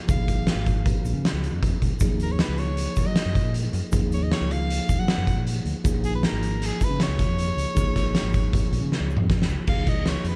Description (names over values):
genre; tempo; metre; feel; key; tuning
progressive instrumental, band music in an uneven meter; 156 BPM; 5/4; straight; Db major; A4 = 440 Hz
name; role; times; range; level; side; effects
mellow tine electric piano; accompaniment; 0.0-10.4 s; F3 to Ab4; -32 LUFS; equal; none
bright soprano saxophone; melody; 0.1-10.4 s; Ab4 to Gb5; -35 LUFS; equal; analog delay
fingered electric bass; bass; 0.1-10.4 s; Ab1 to Gb3; -29 LUFS; equal; none
oversized low-tuned drum kit; drums; 0.1-10.3 s; crash cymbal, hi-hat, kick drum, snare drum, toms; -26 LUFS; equal; vintage 12-bit sampler grit
tube shaker; percussion; 0.1-9.6 s; none; -46 LUFS; equal; none
room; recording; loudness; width
light reverb; none; -24 LUFS; mono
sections
0.0-9.7 A section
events
drum fill 8.9-9.7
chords
0.0 Db; 2.0 Gbadd9; 5.8 Db